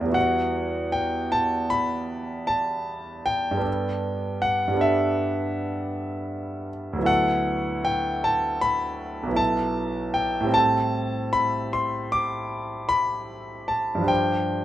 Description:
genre	classical, impressionist solo piano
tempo	52 BPM (dotted quarters)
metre	9/8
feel	rubato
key	unclear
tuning	A4 = 439 Hz
part	bright concert grand piano	solo	0.0-14.6 s	B1 to A6	-22 LUFS	equal	none
room	light reverb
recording	none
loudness	-22 LUFS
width	side -13 dB against mid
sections	0.0-14.6 A section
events	none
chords	0.2 Emadd9; 3.7 G69; 7.1 D69; 9.4 B7sus4; 10.6 Am7; 14.1 G7sus4

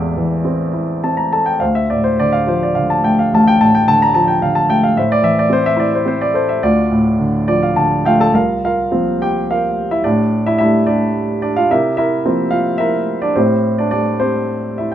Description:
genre	classical, lyrical solo piano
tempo	107 BPM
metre	3/4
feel	rubato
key	D minor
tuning	A4 = 440 Hz
part	warm grand piano	solo	0.0-14.9 s	A1 to Bb5	-13 LUFS	equal	none
room	light reverb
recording	dark, warm production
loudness	-13 LUFS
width	side -11 dB against mid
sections	0.0-8.3 A section; 8.3-14.9 B section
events	grand piano fill 7.2-8.3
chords	0.0 Am; 1.6 Dm7; 5.0 Am; 6.6 Dm; 8.3 C7sus4; 10.0 A7sus4; 11.7 C7sus4; 13.4 A7sus4

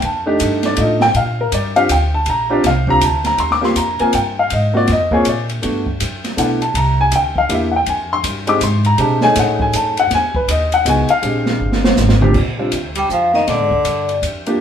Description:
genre	jazz, small-group swing and bop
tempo	161 BPM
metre	3/4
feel	swing 63% on 8ths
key	Bb major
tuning	A4 = 440 Hz
part	warm upright piano	accompaniment	0.0-14.6 s	Bb2 to D6	-15 LUFS	left 1 dB	none
part	upright bass	bass	0.0-14.6 s	G1 to B2	-20 LUFS	equal	none
part	open jazz drum kit	drums	0.0-14.5 s	crash cymbal, hi-hat, kick drum, ride cymbal, snare drum, toms	-22 LUFS	right 1 dB	none
part	vibraphone with medium hard mallets	melody	13.0-14.2 s	D5 to G5	-16 LUFS	left 2 dB	none
part	bright tenor saxophone	second line	13.0-14.2 s	D3 to G3	-20 LUFS	right 3 dB	none
room	wet studio reverb, RT60 0.8 s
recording	band playing live in one room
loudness	-13 LUFS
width	side -8 dB against mid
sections	0.0-3.4 A section; 3.4-12.4 A section; 12.4-14.6 B section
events	drum fill 11.6-12.4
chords	0.0 F13; 1.1 Bb69; 3.4 Eb69; 4.5 Ab69; 5.6 Gmaj9; 6.7 C7; 7.9 Fmadd9; 9.0 B13; 10.1 Emaj9; 11.2 Bb13; 12.4 Bb6

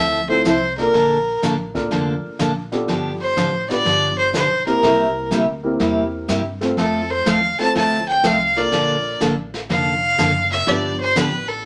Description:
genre	country, western swing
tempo	123 BPM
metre	4/4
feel	swing 67% on 8ths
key	F major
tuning	A4 = 438 Hz
part	clear fiddle	melody	0.0-11.7 s	A4 to A5	-20 LUFS	equal	none
part	picked steel-string acoustic guitar	accompaniment	0.0-11.3 s	C3 to A4	-23 LUFS	equal	none
part	upright bass	bass	0.0-11.6 s	F1 to G2	-34 LUFS	equal	none
part	dark upright piano	accompaniment	0.3-11.7 s	A3 to C5	-26 LUFS	equal	none
part	jazz brush drum kit	drums	0.5-11.7 s	brushed snare drum, hi-hat, kick drum, snare drum	-30 LUFS	equal	none
room	wet studio ambience, RT60 0.5 s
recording	none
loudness	-19 LUFS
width	mono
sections	0.0-11.7 A section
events	fiddle solo 0.0-11.7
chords	0.0 Fmaj7; 0.9 Bbmaj7; 2.9 G7; 4.8 C7; 6.8 F; 8.7 Bbmaj7; 10.7 G7

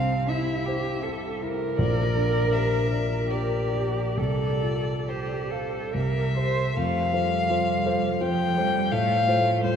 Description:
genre	classical, slow romantic movement for piano trio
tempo	65-85 BPM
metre	3/4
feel	rubato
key	F major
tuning	A4 = 440 Hz
part	muted violin	melody	0.0-9.8 s	C5 to G5	-28 LUFS	left 3 dB	none
part	muted cello	second line	0.0-9.8 s	F3 to C5	-28 LUFS	right 3 dB	none
part	dark concert grand piano	accompaniment	0.0-9.8 s	Bb1 to F5	-26 LUFS	equal	none
room	wet cathedral reverb, RT60 6.0 s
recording	in a vast, echoing space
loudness	-22 LUFS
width	side -7 dB against mid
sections	0.0-6.8 A section; 6.8-9.8 B section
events	none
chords	0.0 Am/C; 1.8 Gm/Bb; 4.2 F/C; 5.9 C; 6.8 F; 8.9 F/A

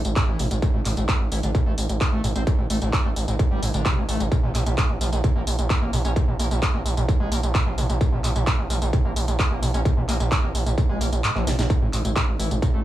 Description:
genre	driving peak-time techno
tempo	130 BPM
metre	4/4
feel	straight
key	unclear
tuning	A4 = 438 Hz
part	gritty driven synth bass	bass	0.0-12.8 s	A1 to Bb1	-24 LUFS	right 1 dB	sidechain pumping
part	techno drum kit	drums	0.0-12.7 s	handclaps, hi-hat, snare drum, tambourine	-28 LUFS	equal	overdrive
part	overdriven acid bass	riff	0.2-12.8 s	G2 to Db4	-29 LUFS	equal	distortion, lush chorus, sidechain pumping, tape echo
part	electronic kick drum	drums	0.2-12.7 s	none	-22 LUFS	equal	distortion, overdrive
room	little or no reverb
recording	dry, gritty hardware recording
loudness	-20 LUFS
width	side -14 dB against mid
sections	0.0-12.8 A section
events	kick drops out 11.2-11.7; drum fill 11.5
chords	none

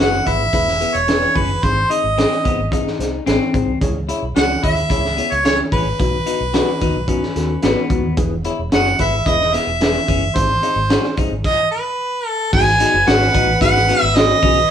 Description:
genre	uptempo 1960s-style soul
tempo	110 BPM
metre	4/4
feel	straight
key	unclear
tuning	A4 = 440 Hz
part	mellow harmonica	melody	0.0-14.7 s	B4 to G#5	-17 LUFS	right 1 dB	none
part	mellow reed electric piano	accompaniment	0.0-14.6 s	B3 to D#5	-25 LUFS	left 2 dB	fast tremolo
part	clean electric guitar	riff	0.0-14.6 s	B3 to F#4	-24 LUFS	left 8 dB	none
part	electric guitar through a small old amp	stabs	0.0-14.3 s	B3 to B4	-26 LUFS	right 1 dB	none
part	vintage muted fingered electric bass	bass	0.0-14.6 s	E1 to D#2	-23 LUFS	equal	none
part	crunchy breakbeat drum kit	drums	0.0-14.6 s	crash cymbal, hi-hat, kick drum, snare drum	-20 LUFS	right 1 dB	none
part	warm studio string section	second line	12.5-14.7 s	B4 to B5	-25 LUFS	left 2 dB	none
room	moderate studio reverb, RT60 0.8 s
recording	band playing live in one room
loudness	-14 LUFS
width	side -9 dB against mid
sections	0.0-12.5 A section; 12.5-14.7 B section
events	stop 11.4-12.5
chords	0.0 E; 1.6 G#; 3.8 C#m; 6.0 B; 8.2 E; 10.4 G#; 11.4 N.C.; 12.5 G#m7

